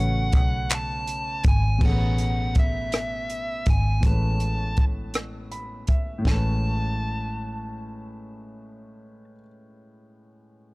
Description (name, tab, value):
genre	slow six-eight R&B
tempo	54 BPM (dotted quarters)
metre	6/8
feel	straight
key	A major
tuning	A4 = 440 Hz
part	dark smooth lead guitar	melody	0.0-9.2 s	E5 to A5	-31 LUFS	equal	overdrive
part	warm concert grand piano	accompaniment	0.0-10.7 s	A2 to B5	-33 LUFS	left 1 dB	none
part	vintage muted fingered electric bass	bass	0.0-9.4 s	G#1 to B1	-26 LUFS	equal	none
part	compact cocktail drum kit	drums	0.3-6.4 s	crash cymbal, handclaps, hi-hat, kick drum, rim click, snare drum	-22 LUFS	equal	none
room	small room reverb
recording	dry, gritty hardware recording, cassette tape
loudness	-22 LUFS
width	side -23 dB against mid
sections	0.0-1.8 A section; 1.8-6.3 B section; 6.3-8.5 C section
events	grand piano fill 5.1-6.3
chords	0.0 A6; 1.8 Amaj9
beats	0.70 | 1.81 2.92 | 4.03 5.14 | 6.25 7.36